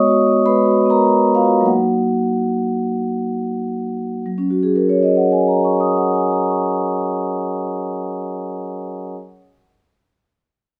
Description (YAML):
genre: classical, contemporary piece for solo vibraphone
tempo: 88-106 BPM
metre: 4/4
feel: rubato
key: F# major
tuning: A4 = 440 Hz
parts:
  - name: vibraphone with soft mallets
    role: solo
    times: 0.0-9.2 s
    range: F#3 to D#6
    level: -18 LUFS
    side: equal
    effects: none
room: moderate stone room reverb, RT60 1.1 s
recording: heard from further back in the room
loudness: -18 LUFS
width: mono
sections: 0.0-4.3 A section; 4.3-6.9 B section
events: slowing down 0.0-4.3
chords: 0.0 G#m11; 1.7 F#6; 4.3 F#69